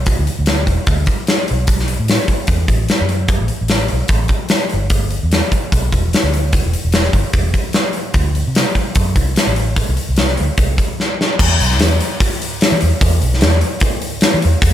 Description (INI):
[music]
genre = blues rock power trio and southern rock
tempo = 148 BPM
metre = 4/4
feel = straight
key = E minor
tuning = A4 = 440 Hz
[part]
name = vintage muted fingered electric bass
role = bass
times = 0.0-14.7 s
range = E1 to E3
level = -16 LUFS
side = equal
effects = none
[part]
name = huge arena drum kit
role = drums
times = 0.1-14.7 s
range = crash cymbal, hi-hat, kick drum, snare drum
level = -15 LUFS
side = equal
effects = none
[sound]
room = little or no reverb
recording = none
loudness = -13 LUFS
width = side -11 dB against mid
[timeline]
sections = 0.0-11.4 A section; 11.4-14.7 B section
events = drum fill 11.0-11.4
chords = none